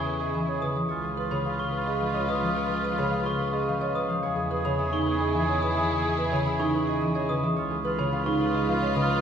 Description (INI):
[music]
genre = classical, minimalist pattern music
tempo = 108 BPM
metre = 3/4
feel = straight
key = unclear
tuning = A4 = 440 Hz
[part]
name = concert harp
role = melody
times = 0.0-9.2 s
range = G#4 to E#5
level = -33 LUFS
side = left 5 dB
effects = none
[part]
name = warm oboe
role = second line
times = 0.0-9.2 s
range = E#4 to G#4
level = -33 LUFS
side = right 3 dB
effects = none
[part]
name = concert harp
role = accompaniment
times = 0.0-9.2 s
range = C#3 to C#4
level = -31 LUFS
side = left 1 dB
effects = none
[part]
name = dark chamber string section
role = sustained chords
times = 0.0-9.2 s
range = E4 to B4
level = -33 LUFS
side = left 2 dB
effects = none
[part]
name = glockenspiel with soft plastic mallets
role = arpeggios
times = 0.0-9.1 s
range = B5 to D#6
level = -32 LUFS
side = right 2 dB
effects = none
[part]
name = rich double bass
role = bass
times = 0.0-9.2 s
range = C#2 to E2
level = -33 LUFS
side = right 1 dB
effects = none
[part]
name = marimba with medium mallets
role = arpeggios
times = 0.2-9.1 s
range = D#4 to C#5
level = -31 LUFS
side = right 4 dB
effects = none
[sound]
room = wet recital hall reverb, RT60 1.8 s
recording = recorded in a church or concert hall, nothing above 11.0 kHz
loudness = -24 LUFS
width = side -8 dB against mid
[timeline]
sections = 0.0-9.2 A section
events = none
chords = 0.0 Emaj7; 0.9 C#7; 4.2 Emaj7; 7.6 C#7